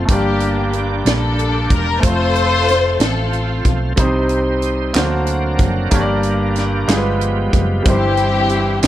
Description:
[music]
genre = slow gospel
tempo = 62 BPM (dotted quarters)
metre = 6/8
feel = straight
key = unclear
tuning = A4 = 440 Hz
[part]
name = warm studio string section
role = melody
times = 0.0-4.0, 7.9-8.8 s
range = Bb3 to C5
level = -18 LUFS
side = left 4 dB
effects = none
[part]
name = clear baby grand piano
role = accompaniment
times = 0.0-8.9 s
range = G2 to D5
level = -20 LUFS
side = equal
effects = none
[part]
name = bright tonewheel organ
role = sustained chords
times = 0.0-8.9 s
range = E3 to D5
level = -26 LUFS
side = right 3 dB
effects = slow rotary speaker, overdrive, chorus vibrato
[part]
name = hollow-body short-scale fingered electric bass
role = bass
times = 0.0-8.9 s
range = E1 to D2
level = -20 LUFS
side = equal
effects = none
[part]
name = tight funk drum kit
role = drums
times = 0.1-8.9 s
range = hi-hat, kick drum, snare drum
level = -18 LUFS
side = equal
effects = none
[part]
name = group handclap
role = percussion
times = 4.9-8.9 s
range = none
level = -25 LUFS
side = right 2 dB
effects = none
[sound]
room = light reverb, studio ambience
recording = dark, warm production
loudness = -14 LUFS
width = side -13 dB against mid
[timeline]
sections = 0.0-8.9 A section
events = none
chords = 0.1 Gm; 2.0 F; 4.0 Cm; 4.9 Daug7; 5.9 Gm; 6.9 G7b9; 7.9 C/G

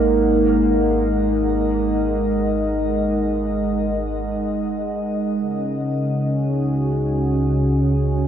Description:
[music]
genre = ambient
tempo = free time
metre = none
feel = none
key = unclear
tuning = A4 = 439 Hz
[part]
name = warm analog pad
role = sustained chords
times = 0.0-8.3 s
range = C#3 to G#5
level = -19 LUFS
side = equal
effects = chorus
[part]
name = electric guitar through a small old amp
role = arpeggios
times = 0.0-1.5 s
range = A#3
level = -25 LUFS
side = right 3 dB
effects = wide subtle chorus, diffuse ambient delay, shimmer reverb
[part]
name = deep rumbling drone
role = bass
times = 0.0-8.3 s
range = G#1 to C#2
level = -26 LUFS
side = equal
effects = built-in reverb, tube saturation
[sound]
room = wet huge ambient reverb, RT60 7.8 s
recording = dark, warm production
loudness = -18 LUFS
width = side -9 dB against mid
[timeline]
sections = 0.0-8.3 A section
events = fade-out on clean electric guitar 0.0-8.3; fade-out on synth drone 0.0-8.3; filter sweep on analog synth pad 0.0-8.3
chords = 0.0 G#5; 5.4 C#sus4

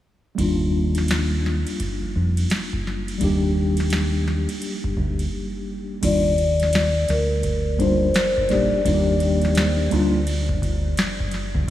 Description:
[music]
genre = hip hop, jazz-hop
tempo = 85 BPM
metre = 4/4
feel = swing 64% on 16ths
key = Eb major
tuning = A4 = 440 Hz
[part]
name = mellow tine electric piano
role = accompaniment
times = 0.3-10.2 s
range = G3 to G4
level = -25 LUFS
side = left 1 dB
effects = medium stereo tremolo
[part]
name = deep dub fingered electric bass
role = bass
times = 0.4-11.7 s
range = Bb1 to F2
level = -22 LUFS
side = equal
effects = none
[part]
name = booming analog drum machine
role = drums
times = 0.4-11.7 s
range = crash cymbal, hi-hat, kick drum, ride cymbal, snare drum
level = -25 LUFS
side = equal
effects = none
[part]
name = vibraphone with soft mallets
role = melody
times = 6.0-9.9 s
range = Bb4 to D5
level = -23 LUFS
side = left 2 dB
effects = none
[sound]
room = moderate cathedral reverb, RT60 6.7 s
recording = dreamy mix soaked in reverb, small room ambience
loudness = -19 LUFS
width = side -13 dB against mid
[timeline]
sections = 0.4-6.0 A section; 6.0-11.7 B section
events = break 5.3-6.0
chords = 0.4 Ebmaj9

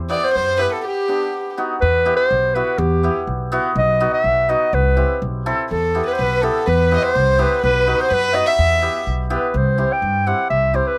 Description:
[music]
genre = klezmer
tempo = 124 BPM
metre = 2/4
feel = straight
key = E harmonic minor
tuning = A4 = 444 Hz
[part]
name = upright bass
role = bass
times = 0.0-10.8 s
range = B1 to G2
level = -24 LUFS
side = equal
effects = none
[part]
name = mellow clarinet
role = melody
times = 0.1-11.0 s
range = G4 to G5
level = -20 LUFS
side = equal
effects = none
[part]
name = warm violin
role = second line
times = 0.1-1.5, 5.7-9.1 s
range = G4 to E5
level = -26 LUFS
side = equal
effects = none
[part]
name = hammered dulcimer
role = accompaniment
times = 0.1-10.9 s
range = B3 to A4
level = -26 LUFS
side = equal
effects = none
[sound]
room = little or no reverb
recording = close, detailed microphones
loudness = -18 LUFS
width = mono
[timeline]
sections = 0.0-1.8 A section; 1.8-9.5 B section; 9.5-11.0 C section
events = speeding up 0.0-11.0; break 0.8-1.8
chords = 0.0 Em; 0.8 G; 1.3 B; 1.8 Em; 3.8 B; 4.7 C; 5.7 Em; 7.6 B; 8.6 Em; 9.5 C

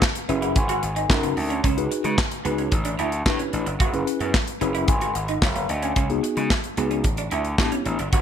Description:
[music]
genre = early-eighties boogie funk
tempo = 111 BPM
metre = 4/4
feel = straight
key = C# dorian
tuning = A4 = 436 Hz
[part]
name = electric guitar at the edge of break-up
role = riff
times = 0.0-8.2 s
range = G#3 to F#4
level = -30 LUFS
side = right 7 dB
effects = analog chorus
[part]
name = modern studio drum kit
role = drums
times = 0.0-8.2 s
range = handclaps, hi-hat, kick drum, snare drum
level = -23 LUFS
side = equal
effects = none
[part]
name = mellow tine electric piano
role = accompaniment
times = 0.3-8.0 s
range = B3 to B5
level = -26 LUFS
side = left 3 dB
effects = medium stereo tremolo
[part]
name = gritty slap bass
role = bass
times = 0.3-8.2 s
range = F#1 to C#3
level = -26 LUFS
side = equal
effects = overdrive
[sound]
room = light reverb, small room ambience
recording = bright 1980s-style digital production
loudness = -20 LUFS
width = side -8 dB against mid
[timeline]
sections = 0.0-8.2 A section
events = tine electric piano fill 0.0-1.6, 4.3-6.0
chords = 0.0 F#9sus4; 0.6 G#9sus4; 1.6 C#9sus4; 2.7 A9sus4; 3.8 F#9sus4; 4.9 G#7sus4; 6.0 C#9sus4; 7.0 A9sus4

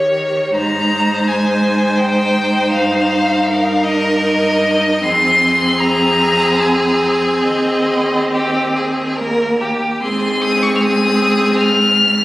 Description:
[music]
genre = classical, slow romantic movement for string quartet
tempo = 68-84 BPM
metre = 3/4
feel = rubato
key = Ab major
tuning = A4 = 440 Hz
[part]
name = rich violin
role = melody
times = 0.0-12.2 s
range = Db5 to F6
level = -16 LUFS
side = left 1 dB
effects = none
[part]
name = rich violin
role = second line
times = 0.0-12.2 s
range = G4 to Db5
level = -18 LUFS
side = equal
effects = none
[part]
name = warm viola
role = accompaniment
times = 0.0-12.2 s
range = Bb3 to G4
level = -19 LUFS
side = right 1 dB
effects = none
[part]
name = rich cello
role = bass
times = 0.0-12.2 s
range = Eb2 to Eb3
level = -20 LUFS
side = right 1 dB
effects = none
[sound]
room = wet recital hall reverb, RT60 1.6 s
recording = recorded on a phone in the room, club reverb, compression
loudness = -12 LUFS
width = side -17 dB against mid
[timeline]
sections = 0.0-10.0 A section; 10.0-12.2 B section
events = none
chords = 0.0 Eb7; 0.5 Ab; 2.7 Eb/G; 5.0 Fm; 7.5 Ab/Eb; 9.2 Eb; 10.0 Ab

